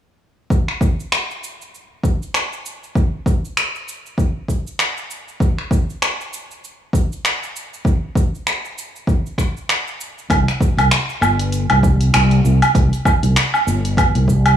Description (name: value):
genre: organic downtempo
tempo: 98 BPM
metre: 4/4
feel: swing 57% on 16ths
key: unclear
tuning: A4 = 440 Hz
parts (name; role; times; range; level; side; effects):
- deep house drum kit; drums; 0.5-14.6 s; cabasa, finger snaps, hi-hat, woodblock; -19 LUFS; equal; none
- electronic kick drum; drums; 0.5-14.4 s; none; -17 LUFS; equal; none
- fretless electric bass; bass; 10.3-14.6 s; G1 to C2; -15 LUFS; equal; tube saturation, ensemble chorus, sidechain pumping
room: light reverb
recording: dry, gritty hardware recording, cassette tape, studio ambience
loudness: -16 LUFS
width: side -10 dB against mid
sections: 0.5-10.3 A section; 10.3-14.6 B section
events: none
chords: none